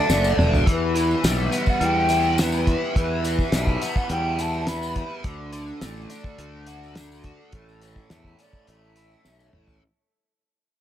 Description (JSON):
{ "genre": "psychedelic rock", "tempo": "105 BPM", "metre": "4/4", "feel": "straight", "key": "E dorian", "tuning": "A4 = 440 Hz", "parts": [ { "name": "breathy mellow jazz flute", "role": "melody", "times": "0.0-9.5 s", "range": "A4 to B5", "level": "-27 LUFS", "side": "left 1 dB", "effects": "slapback echo" }, { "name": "combo organ", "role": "sustained chords", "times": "0.0-9.8 s", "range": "A3 to E5", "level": "-35 LUFS", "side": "right 3 dB", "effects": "none" }, { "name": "biting overdriven guitar", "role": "riff", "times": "0.0-9.8 s", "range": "A2 to F#4", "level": "-27 LUFS", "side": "left 1 dB", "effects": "flanger" }, { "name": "fuzz fingered electric bass", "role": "bass", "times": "0.1-9.8 s", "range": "E1 to E2", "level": "-26 LUFS", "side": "equal", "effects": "overdrive" }, { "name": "cloth-damped thuddy drum kit", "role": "drums", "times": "0.1-9.8 s", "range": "hi-hat, kick drum, snare drum, toms", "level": "-23 LUFS", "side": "equal", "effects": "none" }, { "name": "tambourine", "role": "percussion", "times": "0.1-9.8 s", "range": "none", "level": "-37 LUFS", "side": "left 4 dB", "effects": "none" } ], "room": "light reverb, small room reverb", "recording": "none", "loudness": "-19 LUFS", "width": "side -11 dB against mid", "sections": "0.0-9.8 A section", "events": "fade-out 0.0-9.8; drum fill 0.1-0.7, 9.2-9.8", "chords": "0.0 D; 0.7 Em; 5.2 D; 7.5 A" }